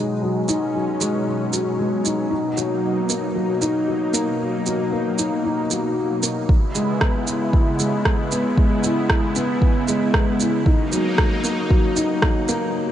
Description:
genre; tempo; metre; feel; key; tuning
piano and strings electronica; 115 BPM; 4/4; straight; unclear; A4 = 440 Hz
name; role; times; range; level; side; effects
lush unison pad; sustained chords; 0.0-12.7 s; B2 to E4; -25 LUFS; right 1 dB; chorus, phaser
dark upright piano; riff; 0.0-12.9 s; F#3 to E4; -22 LUFS; left 1 dB; digital delay
electronic shaker and rim click; drums; 0.5-12.6 s; none; -25 LUFS; right 2 dB; none
electronic kick drum; drums; 6.5-12.3 s; none; -18 LUFS; equal; none
room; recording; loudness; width
moderate huge ambient reverb, RT60 7.5 s; nothing above 10.4 kHz; -18 LUFS; side -11 dB against mid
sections
0.0-12.9 A section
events
build-up 0.0-12.9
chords
0.0 G#m7; 2.3 Bmaj7; 6.5 C#m7; 10.7 F#6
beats
| 0.23 0.75 1.27 1.79 | 2.31 2.84 3.36 3.88 | 4.40 4.92 5.45 5.97 | 6.49 7.01 7.53 8.05 | 8.58 9.10 9.62 10.14 | 10.66 11.18 11.71 12.23 | 12.75

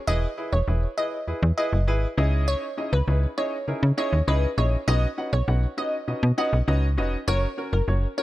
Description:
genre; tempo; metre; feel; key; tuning
dance-pop; 100 BPM; 4/4; straight; B major; A4 = 440 Hz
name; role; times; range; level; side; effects
glassy wavetable pluck; melody; 0.1-8.2 s; A#4 to D#5; -29 LUFS; equal; chorus, tape echo
warm baby grand piano; accompaniment; 0.1-8.2 s; C#4 to F#5; -29 LUFS; left 1 dB; none
slap-like FM bass; bass; 0.1-8.1 s; E1 to C#3; -21 LUFS; equal; none
room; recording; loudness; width
studio ambience; none; -22 LUFS; side -16 dB against mid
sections
0.0-8.2 A section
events
none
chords
0.1 E; 2.2 C#madd9; 4.9 Badd9; 7.3 F#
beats
| 0.08 0.68 1.28 1.88 | 2.48 3.08 3.68 4.28 | 4.88 5.48 6.08 6.68 | 7.28 7.88

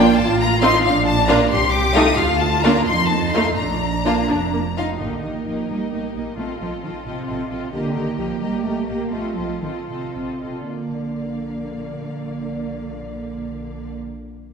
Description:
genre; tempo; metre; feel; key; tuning
quick classical-period movement for string orchestra; 72-90 BPM (dotted quarters); 6/8; straight; Bb major; A4 = 441 Hz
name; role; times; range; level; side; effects
clear studio violin section; melody; 0.0-13.9 s; F4 to Eb6; -23 LUFS; left 5 dB; none
rich studio violin section; second line; 0.0-13.9 s; F4 to F5; -29 LUFS; left 4 dB; none
warm studio viola section; accompaniment; 0.0-13.9 s; A3 to G4; -23 LUFS; right 2 dB; none
warm studio cello section; bass; 0.0-13.9 s; C3 to G4; -26 LUFS; right 2 dB; none
warm studio double bass section; bass; 0.0-13.9 s; F1 to F2; -27 LUFS; right 2 dB; none
room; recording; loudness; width
wet scoring stage reverb, RT60 2.0 s; heard from further back in the room; -18 LUFS; side -6 dB against mid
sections
0.0-5.0 A section; 5.0-10.7 B section; 10.7-13.9 C section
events
slowing down 7.1-10.7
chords
0.2 F7/A; 0.8 Bb; 1.5 F7/C; 2.2 Bb/D; 2.9 F7; 3.6 Bb; 5.0 Eb/Bb; 6.4 F7/Bb; 7.7 Eb/Bb; 9.1 F7/Bb; 10.7 Bb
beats
0.17 | 0.84 1.51 | 2.18 2.87 | 3.58 4.29 | 5.00 5.69 | 6.37 7.06 | 7.73 8.41 | 9.12 9.88 | 10.70 11.50 | 12.30 13.10

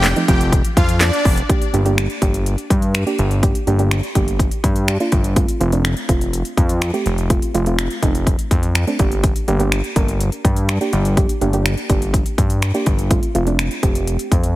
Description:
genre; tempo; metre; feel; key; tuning
dance-pop; 124 BPM; 4/4; straight; G minor; A4 = 437 Hz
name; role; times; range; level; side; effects
supersaw chords; melody; 0.0-1.4 s; D4 to G5; -23 LUFS; left 1 dB; sidechain pumping, ping-pong delay
fat analog bass; bass; 0.0-14.6 s; F1 to G2; -18 LUFS; equal; sidechain pumping
house drum kit; drums; 0.0-14.5 s; finger snaps, handclaps, hi-hat, kick drum, snare drum; -18 LUFS; equal; none
soft round pluck; accompaniment; 0.2-14.3 s; F3 to Bb4; -22 LUFS; right 2 dB; chorus
room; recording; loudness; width
light reverb, digital ambience; heavily compressed radio sound, multiband compression; -15 LUFS; side -16 dB against mid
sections
0.0-1.5 A section; 1.5-14.6 B section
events
drop 0.0-1.5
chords
0.0 F; 1.5 Gm; 5.4 F; 9.0 Gm; 13.1 F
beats
0.04 0.53 1.01 | 1.49 1.98 2.46 2.95 | 3.43 3.91 4.40 4.88 | 5.37 5.85 6.33 6.82 | 7.30 7.79 8.27 8.75 | 9.24 9.72 10.20 10.69 | 11.17 11.66 12.14 12.62 | 13.11 13.59 14.07

